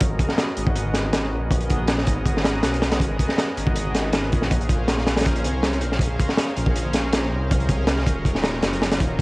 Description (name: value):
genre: drum and bass, jungle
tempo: 160 BPM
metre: 4/4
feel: straight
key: G# dorian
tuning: A4 = 440 Hz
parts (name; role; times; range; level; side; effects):
- lush unison pad; sustained chords; 0.0-9.2 s; F#3 to E#5; -29 LUFS; equal; chorus, cassette tape
- dark detuned saw bass; bass; 0.0-9.2 s; D#1 to B#1; -25 LUFS; equal; none
- crunchy breakbeat drum kit; drums; 0.0-9.2 s; hi-hat, kick drum, snare drum; -21 LUFS; equal; cassette tape
room: light reverb, small room ambience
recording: home recording on cassette, vinyl crackle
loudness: -19 LUFS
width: side -24 dB against mid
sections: 0.0-9.2 A section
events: drop 0.0-9.2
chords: 0.0 G#m9; 4.5 A#m9; 8.3 D#m9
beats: | 0.01 0.38 0.76 1.13 | 1.51 1.88 2.26 2.63 | 3.01 3.38 3.76 4.13 | 4.51 4.88 5.26 5.63 | 6.01 6.38 6.76 7.13 | 7.51 7.88 8.26 8.63 | 9.01